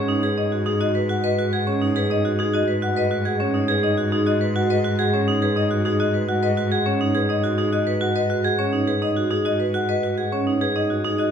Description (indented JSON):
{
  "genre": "classical, minimalist pattern music",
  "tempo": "104 BPM",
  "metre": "3/4",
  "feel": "straight",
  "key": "G# minor",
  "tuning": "A4 = 440 Hz",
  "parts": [
    { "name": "marimba with medium hard mallets", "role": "melody", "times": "0.0-11.3 s", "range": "G#4 to F#5", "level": "-25 LUFS", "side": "left 5 dB", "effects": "none" },
    { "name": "vibraphone with hard mallets", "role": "arpeggios", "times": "0.0-11.3 s", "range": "C#4 to B4", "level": "-22 LUFS", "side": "right 4 dB", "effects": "none" },
    { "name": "rich cello", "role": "bass", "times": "0.0-11.3 s", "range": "G#2", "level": "-25 LUFS", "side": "left 1 dB", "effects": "none" }
  ],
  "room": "wet recital hall reverb, RT60 1.7 s",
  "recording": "heard from further back in the room",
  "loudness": "-19 LUFS",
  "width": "side -8 dB against mid",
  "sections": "0.0-11.3 A section",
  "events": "none",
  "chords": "0.0 G#m7"
}